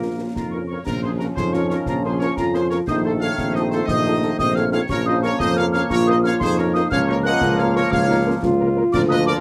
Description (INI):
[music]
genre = military-style march for wind band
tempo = 119 BPM (dotted quarters)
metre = 6/8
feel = straight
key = Bb minor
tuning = A4 = 440 Hz
[part]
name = clear trumpet section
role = melody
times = 0.0-9.3 s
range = Bb4 to Gb5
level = -31 LUFS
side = equal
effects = none
[part]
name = clear woodwind section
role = second line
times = 0.0-9.4 s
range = F4 to Eb5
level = -33 LUFS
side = equal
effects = none
[part]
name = warm euphonium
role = second line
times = 0.0-9.4 s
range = Bb3 to F4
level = -27 LUFS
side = equal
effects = none
[part]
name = mellow French horn section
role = accompaniment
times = 0.0-9.3 s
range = Bb3 to Bb4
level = -29 LUFS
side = equal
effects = none
[part]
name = clear trombone section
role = sustained chords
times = 0.0-9.4 s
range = Eb3 to Db4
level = -28 LUFS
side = equal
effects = none
[part]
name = mellow tuba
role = bass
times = 0.0-9.4 s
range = Bb1 to F2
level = -25 LUFS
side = equal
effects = none
[part]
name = mellow piccolo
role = second line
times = 0.3-9.3 s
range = Bb5 to Gb6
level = -28 LUFS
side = equal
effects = none
[part]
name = concert snare drum, concert bass drum and clash cymbals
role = drums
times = 0.4-9.4 s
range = none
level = -32 LUFS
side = equal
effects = none
[sound]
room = moderate booth ambience, RT60 0.2 s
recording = none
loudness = -20 LUFS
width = mono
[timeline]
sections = 0.9-9.4 A section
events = none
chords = 0.0 Bbm; 2.9 F7/Bb; 4.9 Bbm; 6.9 Bbm/Db